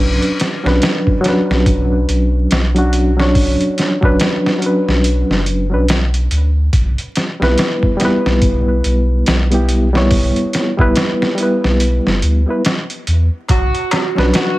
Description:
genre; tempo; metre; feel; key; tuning
trip hop; 71 BPM; 4/4; swing 60% on 16ths; B minor; A4 = 440 Hz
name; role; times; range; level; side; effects
overdriven reed electric piano; accompaniment; 0.0-14.6 s; F#3 to C#5; -16 LUFS; equal; harmonic tremolo, low-pass filter, tape echo
soft dub sub bass; bass; 0.0-14.3 s; F#1 to E2; -15 LUFS; equal; tube saturation
trip hop sampler-style drum kit; drums; 0.2-14.6 s; hi-hat, kick drum, snare drum; -17 LUFS; equal; vintage 12-bit sampler grit, studio ambience
electric guitar at the edge of break-up; melody; 13.5-14.6 s; F#4; -19 LUFS; right 2 dB; wide subtle chorus
darbuka; percussion; 13.5-14.5 s; none; -24 LUFS; left 1 dB; none
room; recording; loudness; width
digital ambience; vinyl crackle; -12 LUFS; side -17 dB against mid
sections
0.0-14.6 A section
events
filter sweep on reed electric piano 0.0-14.6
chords
0.0 Bmadd9; 6.7 Em/B; 13.5 Bmadd9

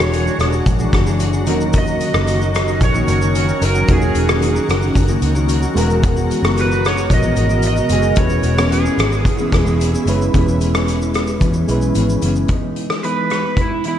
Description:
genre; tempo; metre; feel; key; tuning
indie pop, bedroom pop; 112 BPM; 4/4; straight; E lydian; A4 = 440 Hz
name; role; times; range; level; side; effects
overdriven slide guitar; melody; 0.0-14.0 s; E4 to D#5; -22 LUFS; right 3 dB; wide subtle chorus, analog delay
mellow electric guitar; accompaniment; 0.0-14.0 s; D#3 to A#4; -21 LUFS; left 2 dB; wide subtle chorus, warbly pitch drift
warbly lo-fi synth keys; accompaniment; 0.0-12.5 s; F#3 to B4; -23 LUFS; right 2 dB; chorus
shimmering ambient pad; sustained chords; 0.0-10.3 s; B2 to A#4; -25 LUFS; left 1 dB; chorus, built-in reverb
vintage muted fingered electric bass; bass; 0.0-12.4 s; E1 to E2; -19 LUFS; equal; none
loose indie drum kit; drums; 0.0-14.0 s; hi-hat, kick drum, rim click, shaker; -19 LUFS; equal; vintage 12-bit sampler grit
room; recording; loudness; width
moderate lush hall reverb, RT60 2.3 s; dreamy mix soaked in reverb; -14 LUFS; side -10 dB against mid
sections
0.0-10.3 A section; 10.3-12.5 B section; 12.5-14.0 C section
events
none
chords
0.0 A#7alt/E; 1.5 D#m7/E; 5.8 G#m9/E; 8.2 E6; 12.5 Emaj7

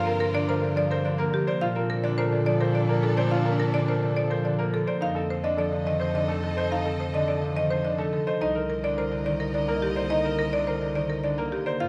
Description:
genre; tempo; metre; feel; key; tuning
classical, minimalist pattern music; 106 BPM; 3/4; straight; unclear; A4 = 439 Hz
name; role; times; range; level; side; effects
buzzing marimba with medium hard mallets; melody; 0.0-11.9 s; G4 to F5; -32 LUFS; equal; none
concert harp; accompaniment; 0.0-11.9 s; C3 to C4; -31 LUFS; equal; none
rich chamber string section; sustained chords; 0.0-11.9 s; D4 to Eb5; -38 LUFS; equal; none
clear grand piano; arpeggios; 0.0-11.9 s; D4 to C5; -33 LUFS; equal; none
mellow bass clarinet; bass; 0.0-11.9 s; C2 to Bb2; -32 LUFS; equal; none
room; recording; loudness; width
moderate recital hall reverb, RT60 1.5 s; none; -26 LUFS; mono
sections
0.0-11.9 A section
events
none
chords
0.0 Gm7; 1.6 Bbmaj7; 5.0 F7; 8.4 Cm7

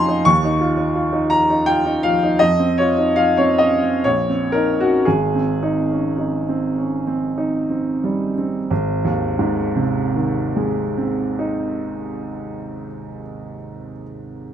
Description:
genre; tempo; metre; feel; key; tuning
classical, impressionist solo piano; 43-87 BPM; 3/4; rubato; Ab major; A4 = 442 Hz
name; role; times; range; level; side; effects
clear baby grand piano; solo; 0.0-14.5 s; Ab1 to Db6; -17 LUFS; equal; none
room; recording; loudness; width
moderate large studio reverb, RT60 1.3 s; nothing above 10.7 kHz; -16 LUFS; side -9 dB against mid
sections
0.0-8.7 A section; 8.7-12.6 B section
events
slowing down 1.3-8.7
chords
0.3 Ebsus2; 2.4 F5; 4.0 Bbmadd9; 5.0 Abmaj7; 8.7 Ab

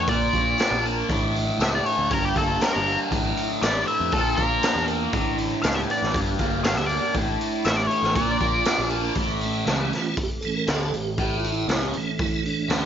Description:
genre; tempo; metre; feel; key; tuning
psychedelic rock; 119 BPM; 4/4; straight; A phrygian dominant; A4 = 435 Hz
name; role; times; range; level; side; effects
octave-fuzz lead guitar; melody; 0.0-8.9 s; G4 to F5; -26 LUFS; left 2 dB; wah, distortion, analog delay
tonewheel organ; sustained chords; 0.0-12.9 s; E3 to Bb4; -31 LUFS; right 4 dB; chorus vibrato, fast rotary speaker
fuzz guitar; riff; 0.0-12.9 s; G2 to D4; -26 LUFS; equal; distortion, phaser
overdriven picked electric bass; bass; 0.0-12.9 s; G1 to F2; -30 LUFS; equal; none
raw garage drum kit; drums; 0.1-12.8 s; hi-hat, kick drum, snare drum; -27 LUFS; equal; none
tambourine; percussion; 0.6-8.8 s; none; -40 LUFS; left 15 dB; none
metallic inharmonic drone; drone; 10.0-12.9 s; A1 to A3; -38 LUFS; equal; chorus, built-in reverb
room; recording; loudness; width
light reverb, small room ambience; nothing above 7.5 kHz; -21 LUFS; side -9 dB against mid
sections
0.0-9.2 A section; 9.2-12.9 B section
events
tonewheel organ solo 9.2-12.9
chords
0.1 Bb; 1.1 Asus4; 2.1 Gm; 3.1 Asus4; 4.1 Bb; 5.1 Asus4; 6.1 Gm; 7.2 Asus4; 8.2 Bb; 9.2 A

